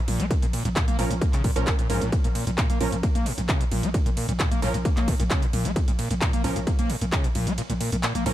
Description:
driving peak-time techno; 132 BPM; 4/4; straight; Bb minor; A4 = 437 Hz
screaming distorted acid line; riff; 0.1-8.3 s; Bb1 to Bb3; -29 LUFS; left 1 dB; distortion, analog chorus, sidechain pumping, dub echo
growling 808-style bass; bass; 0.1-8.3 s; Bb1; -30 LUFS; equal; sidechain pumping, low-pass filter
techno drum kit; drums; 0.1-8.3 s; handclaps, hi-hat, ride cymbal; -31 LUFS; right 1 dB
electronic kick drum; drums; 0.3-7.2 s; -23 LUFS; equal
supersaw stab; stabs; 1.0-8.3 s; F3 to Bb4; -33 LUFS; right 3 dB; lush chorus, sidechain pumping, dub echo
digital ambience; -22 LUFS; side -13 dB against mid
0.0-8.3 A section
kick drops out 7.6-8.3
0.0 Bbm

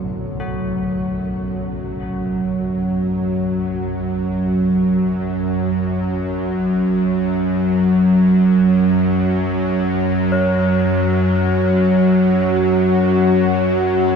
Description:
dark ambient drone; free time; F# minor; A4 = 440 Hz
carillon bells; arpeggios; 0.0-6.8 s; A2 to F#4; -34 LUFS; left 3 dB; diffuse ambient delay, shimmer reverb
bowed-like drone; drone; 0.0-14.2 s; F#2 to F#3; -16 LUFS; equal; built-in reverb
bronze singing bowl; texture; 0.0-14.2 s; C#5; -25 LUFS; left 3 dB; shimmer reverb
deep dark ambient pad; sustained chords; 11.1-14.2 s; F#4 to G#5; -20 LUFS; equal; chorus, built-in reverb, shimmer reverb
wet huge ambient reverb, RT60 8.1 s; -15 LUFS; side -6 dB against mid
0.0-14.2 A section
fade-in on church bells 0.0-14.2
0.0 F#m

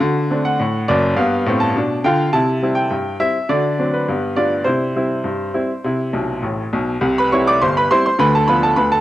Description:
ragtime piano; 103 BPM; 2/4; straight; C major; A4 = 440 Hz
bright baby grand piano; solo; 0.0-9.0 s; F#1 to D6; -15 LUFS; equal; cassette tape
light reverb, small room reverb; home recording on cassette; -15 LUFS; side -14 dB against mid
0.0-7.0 A section; 7.0-9.0 B section
grand piano fill 6.1-7.0
0.0 D7; 1.2 G7; 2.3 C; 3.5 D7; 4.1 G7; 4.7 C; 8.2 Bdim/D

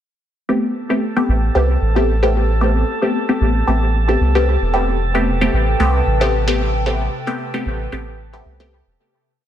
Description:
dub techno; 113 BPM; 4/4; swing 55% on 16ths; A minor; A4 = 440 Hz
filtered dub chord stab; stabs; 0.5-8.7 s; A3 to G4; -18 LUFS; left 1 dB; chorus, phaser, dub echo
drifting glass-harmonics texture; texture; 0.8-9.0 s; A4; -27 LUFS; right 3 dB; chorus, built-in reverb
soft dub sub bass; bass; 1.3-9.0 s; E1 to C2; -17 LUFS; equal
warbly tape-like pad; sustained chords; 5.0-9.0 s; C3 to G5; -26 LUFS; right 1 dB; chorus, built-in reverb, vintage 12-bit sampler grit
light reverb, digital ambience; dense, heavily limited modern master; -15 LUFS; side -10 dB against mid
0.5-9.0 groove
fade-out 6.2-9.0
0.5 Am9

